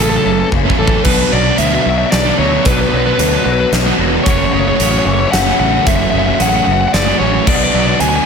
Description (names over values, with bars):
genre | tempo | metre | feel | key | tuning
post-rock | 112 BPM | 3/4 | straight | unclear | A4 = 442 Hz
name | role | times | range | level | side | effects
crunchy overdriven guitar | melody | 0.0-8.2 s | A4 to G#5 | -16 LUFS | left 2 dB | digital delay
twangy electric guitar | arpeggios | 0.0-8.3 s | F#2 to F#3 | -22 LUFS | left 2 dB | ensemble chorus, digital delay
sludgy distorted guitar | riff | 0.0-8.3 s | F#2 to D4 | -20 LUFS | left 13 dB | overdrive
sludgy distorted guitar | riff | 0.0-8.3 s | F#2 to D4 | -18 LUFS | right 14 dB | overdrive
fuzz fingered electric bass | bass | 0.0-8.2 s | E1 to D2 | -18 LUFS | equal | overdrive
huge arena drum kit | drums | 0.5-8.1 s | crash cymbal, hi-hat, kick drum, snare drum | -18 LUFS | equal | none
warm symphonic string section | sustained chords | 1.0-8.3 s | B3 to F#5 | -27 LUFS | left 2 dB | none
room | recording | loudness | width
small room ambience | none | -10 LUFS | side -6 dB against mid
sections
0.0-8.3 A section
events
drum fill 0.5-1.1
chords
0.0 F#m7; 1.1 Bm7; 4.3 F#m7; 7.5 Bm7